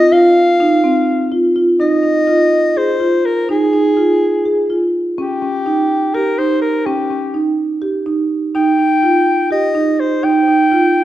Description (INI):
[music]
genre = contemporary instrumental, contemporary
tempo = 249 BPM (eighths)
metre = 7/8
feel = straight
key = F minor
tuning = A4 = 439 Hz
[part]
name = breathy soprano saxophone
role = melody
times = 0.0-11.0 s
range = G4 to G5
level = -16 LUFS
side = left 2 dB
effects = none
[part]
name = marimba with medium mallets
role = arpeggios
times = 0.0-11.0 s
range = C4 to Ab4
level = -14 LUFS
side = right 2 dB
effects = none
[sound]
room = wet recital hall reverb, RT60 1.3 s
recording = none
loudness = -12 LUFS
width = side -13 dB against mid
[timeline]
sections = 0.0-1.8 A section; 1.8-11.0 B section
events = none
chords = 0.0 Csus4; 1.8 Fm7; 5.2 Eb7; 8.6 Ebadd9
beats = | 0.12 0.36 0.60 0.84 1.08 1.32 1.56 | 1.81 2.05 2.29 2.53 2.77 3.01 3.25 | 3.49 3.73 3.98 4.22 4.46 4.70 4.94 | 5.18 5.42 5.66 5.90 6.14 6.38 6.63 | 6.87 7.11 7.35 7.59 7.83 8.07 8.31 | 8.55 8.79 9.03 9.27 9.52 9.76 10.00 | 10.24 10.48 10.72 10.96